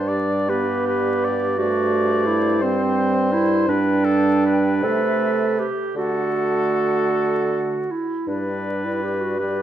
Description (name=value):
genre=classical, slow romantic movement for wind quintet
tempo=49-57 BPM (dotted quarters)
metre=6/8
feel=rubato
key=G major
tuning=A4 = 439 Hz
part: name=concert flute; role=melody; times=0.0-9.6 s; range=C5 to G5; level=-33 LUFS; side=left 5 dB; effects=none
part: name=warm oboe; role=second line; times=0.0-9.6 s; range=A4 to D5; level=-26 LUFS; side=left 2 dB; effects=none
part: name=clear French horn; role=accompaniment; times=0.0-9.6 s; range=G3 to B3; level=-27 LUFS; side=left 1 dB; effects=none
part: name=mellow clarinet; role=accompaniment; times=0.0-9.6 s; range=C4 to A4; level=-21 LUFS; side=right 3 dB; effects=none
part: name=mellow bassoon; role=bass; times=0.0-9.6 s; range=G2 to D3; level=-25 LUFS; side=right 1 dB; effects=none
room=wet recital hall reverb, RT60 1.7 s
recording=vinyl crackle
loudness=-18 LUFS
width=side -10 dB against mid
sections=0.0-9.6 A section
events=none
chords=0.0 G; 1.6 C5/G; 3.7 G; 4.8 Am/C; 6.0 D; 8.3 G